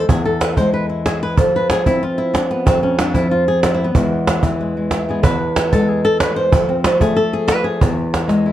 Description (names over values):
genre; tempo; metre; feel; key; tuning
flamenco; 186 BPM; 4/4; straight; unclear; A4 = 440 Hz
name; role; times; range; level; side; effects
flamenco guitar; melody; 0.0-8.5 s; E2 to C5; -16 LUFS; equal; plate reverb
cajon; percussion; 0.1-8.4 s; none; -18 LUFS; right 2 dB; none
room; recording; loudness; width
light reverb; dark, warm production; -14 LUFS; side -12 dB against mid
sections
0.0-8.5 A section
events
nylon-string guitar solo 0.0-8.5; drum fill 8.1-8.5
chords
0.0 E; 1.4 F5; 4.0 E; 6.5 F; 7.8 E